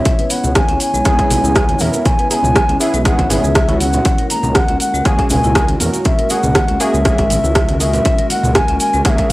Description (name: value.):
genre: afro house.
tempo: 120 BPM.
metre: 4/4.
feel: swing 53% on 16ths.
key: unclear.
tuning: A4 = 439 Hz.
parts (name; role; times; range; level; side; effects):
bass bansuri; melody; 0.0-9.3 s; E5 to A#5; -18 LUFS; equal; none.
dark analog pad; sustained chords; 0.0-9.3 s; G#3 to C#5; -26 LUFS; left 1 dB; chorus, sidechain pumping.
marimba with medium hard mallets; arpeggios; 0.1-9.3 s; G#3 to B4; -24 LUFS; left 1 dB; sidechain pumping, tape echo.
afro-pop drum kit; drums; 0.1-9.3 s; hi-hat, rim click, toms; -20 LUFS; equal; studio reverb.
electronic kick drum; drums; 0.1-9.3 s; none; -16 LUFS; equal; overdrive, studio reverb.
congas; percussion; 0.1-9.2 s; none; -25 LUFS; right 2 dB; none.
tube shaker; percussion; 0.1-9.2 s; none; -25 LUFS; right 2 dB; none.
dark detuned saw bass; bass; 0.4-9.0 s; G#1 to E2; -19 LUFS; equal; transformer saturation, sidechain pumping.
warm analog keys; stabs; 1.1-9.3 s; A#3 to A#4; -22 LUFS; right 1 dB; chorus, sidechain pumping.
room: studio reverb.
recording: dry, gritty hardware recording, transformer saturation, cassette tape.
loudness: -12 LUFS.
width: side -18 dB against mid.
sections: 0.0-9.3 A section.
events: none.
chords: 0.0 C#m7; 4.1 F#add9.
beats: | 0.06 0.56 1.06 1.56 | 2.06 2.56 3.06 3.56 | 4.06 4.56 5.06 5.56 | 6.06 6.56 7.06 7.56 | 8.06 8.56 9.06.